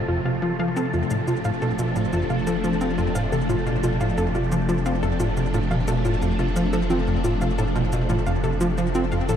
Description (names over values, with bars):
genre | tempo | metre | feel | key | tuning
ambient, sequencer-driven space music | 88 BPM | 4/4 | straight | F major | A4 = 440 Hz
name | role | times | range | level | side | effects
phased string machine | sustained chords | 0.0-9.4 s | C3 to F4 | -26 LUFS | equal | ensemble chorus, phaser
warbly dusty pluck | arpeggios | 0.0-9.4 s | F4 to F5 | -28 LUFS | left 1 dB | chorus, auto-pan, cassette tape, ping-pong delay
warm sub bass | bass | 0.0-9.4 s | F1 | -29 LUFS | equal | none
wind-like tuned noise texture | texture | 0.0-9.4 s | A4 | -34 LUFS | right 2 dB | built-in reverb
tight sequencer bass | riff | 0.1-9.4 s | F2 to C4 | -25 LUFS | equal | wide subtle chorus, cassette tape, ping-pong delay
electronic shaker and toms | percussion | 0.8-9.4 s | none | -36 LUFS | left 2 dB | overdrive, ping-pong delay
room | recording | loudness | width
moderate huge ambient reverb, RT60 7.4 s | dark, warm production | -20 LUFS | side -9 dB against mid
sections
0.0-9.4 A section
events
none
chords
0.0 F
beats
0.08 | 0.76 1.45 2.13 2.81 | 3.49 4.17 4.86 5.54 | 6.22 6.90 7.58 8.26 | 8.95